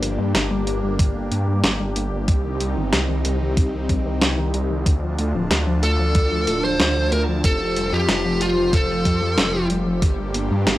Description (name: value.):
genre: synthwave.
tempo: 93 BPM.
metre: 4/4.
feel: straight.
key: unclear.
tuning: A4 = 443 Hz.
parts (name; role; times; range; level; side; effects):
phased analog pad; sustained chords; 0.0-10.8 s; F3 to A5; -26 LUFS; left 1 dB; phaser, chorus, sidechain pumping, cassette tape.
warbly dusty pluck; arpeggios; 0.0-10.8 s; C3 to Bb3; -29 LUFS; left 2 dB; chorus, cassette tape, tape echo.
wide detuned saw bass; bass; 0.0-10.8 s; D1 to G2; -23 LUFS; equal; chorus, sidechain pumping.
clean 12-bit digital drum machine; drums; 0.0-10.8 s; hi-hat, snare drum; -21 LUFS; equal; cassette tape.
electronic kick drum; drums; 1.0-10.2 s; none; -19 LUFS; equal; cassette tape.
fuzz lead guitar; melody; 5.8-9.7 s; F4 to C5; -22 LUFS; equal; distortion, tape echo.
room: moderate studio reverb, RT60 0.6 s.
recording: home recording on cassette.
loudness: -18 LUFS.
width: side -15 dB against mid.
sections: 0.0-10.8 A section.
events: none.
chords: 0.0 Gm; 2.3 Cm; 4.9 Dm; 7.4 Fadd9; 10.0 Gm.